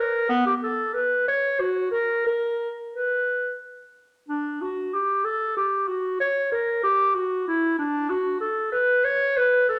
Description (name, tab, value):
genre	classical, baroque-style fantasia for unaccompanied clarinet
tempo	88-96 BPM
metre	3/4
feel	rubato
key	B minor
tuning	A4 = 440 Hz
part	mellow clarinet	solo	0.0-9.8 s	B3 to C#5	-24 LUFS	equal	none
room	moderate recital hall reverb, RT60 1.4 s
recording	none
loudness	-24 LUFS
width	mono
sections	0.0-4.3 A section; 4.3-9.8 B section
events	none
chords	none